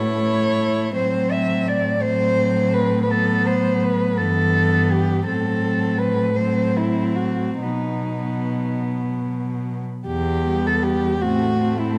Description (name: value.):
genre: classical, lyrical piece for cello ensemble.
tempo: 47-59 BPM (dotted quarters).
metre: 6/8.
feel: rubato.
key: E minor.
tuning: A4 = 440 Hz.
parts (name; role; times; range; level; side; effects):
dark cello; melody; 0.0-12.0 s; D#4 to E5; -25 LUFS; equal; none.
clear cello; second line; 0.0-12.0 s; B3 to E4; -29 LUFS; equal; none.
dark cello; accompaniment; 0.0-12.0 s; E3 to A3; -28 LUFS; equal; none.
dark cello; bass; 0.0-12.0 s; E2 to B2; -26 LUFS; equal; none.
room: moderate concert hall reverb, RT60 2.4 s.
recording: close, detailed microphones.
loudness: -21 LUFS.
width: mono.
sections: 0.0-10.1 A section; 10.1-12.0 B section.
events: none.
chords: 0.0 A; 1.0 F#dim/A; 4.2 Em/G; 5.3 F#dim/A; 7.6 B; 10.1 Em; 11.2 Am.